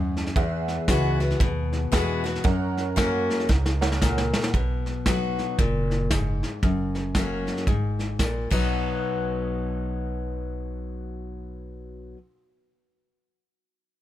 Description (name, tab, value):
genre	honky-tonk and classic country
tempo	115 BPM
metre	4/4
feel	swing 62% on 8ths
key	B major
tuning	A4 = 440 Hz
part	picked steel-string acoustic guitar	accompaniment	0.0-12.2 s	E2 to F#4	-27 LUFS	left 2 dB	none
part	tack piano	accompaniment	0.0-4.5 s	G#4 to F#5	-33 LUFS	right 8 dB	none
part	upright bass	bass	0.0-12.1 s	F#1 to F#2	-28 LUFS	right 1 dB	none
part	vintage brush drum kit	drums	0.2-8.6 s	crash cymbal, hi-hat, kick drum, snare drum	-26 LUFS	equal	none
room	little or no reverb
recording	none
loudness	-22 LUFS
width	side -13 dB against mid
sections	0.0-4.5 A section; 4.5-8.7 B section; 8.7-12.9 C section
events	drum fill 3.5-4.5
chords	0.4 Eadd9; 2.4 F#; 4.5 B; 6.6 F#; 8.5 B